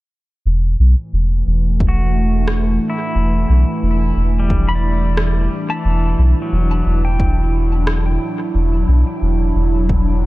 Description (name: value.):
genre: ambient dub.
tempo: 89 BPM.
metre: 4/4.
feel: straight.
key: E minor.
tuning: A4 = 440 Hz.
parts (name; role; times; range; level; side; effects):
airy breathy pad; sustained chords; 0.5-10.3 s; A2 to E4; -22 LUFS; right 1 dB; chorus.
soft dub sub bass; bass; 0.5-10.3 s; E1 to B1; -15 LUFS; equal; none.
electronic kick drum; drums; 1.8-10.0 s; none; -18 LUFS; equal; none.
pedal steel guitar; arpeggios; 1.9-9.9 s; E3 to B5; -26 LUFS; left 2 dB; vintage 12-bit sampler grit, low-pass filter, tape echo.
electronic rim click; drums; 2.5-8.0 s; none; -26 LUFS; equal; dub echo.
room: digital ambience.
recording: none.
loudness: -14 LUFS.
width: side -18 dB against mid.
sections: 0.5-10.3 A section.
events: none.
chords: 0.5 Em11.